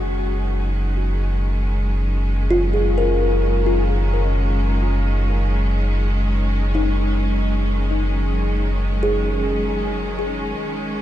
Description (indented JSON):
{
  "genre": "ambient",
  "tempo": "free time",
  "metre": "none",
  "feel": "none",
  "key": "unclear",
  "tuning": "A4 = 440 Hz",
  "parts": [
    { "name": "bright symphonic string section", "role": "sustained chords", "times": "0.0-11.0 s", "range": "D#3 to C#4", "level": "-25 LUFS", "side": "right 1 dB", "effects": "none" },
    { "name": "kalimba", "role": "arpeggios", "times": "0.0-10.9 s", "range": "D#4 to A#4", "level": "-25 LUFS", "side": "left 2 dB", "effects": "ping-pong delay" },
    { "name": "warm sub bass", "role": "bass", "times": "0.0-11.0 s", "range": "F#1", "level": "-20 LUFS", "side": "equal", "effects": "tube saturation" }
  ],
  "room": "light reverb, studio reverb",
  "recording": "dark, warm production",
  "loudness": "-18 LUFS",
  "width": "side -12 dB against mid",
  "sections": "0.0-11.0 A section",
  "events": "fade-in on string section 0.0-11.0; fade-out on kalimba 0.0-11.0",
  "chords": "0.0 D#m7/F#"
}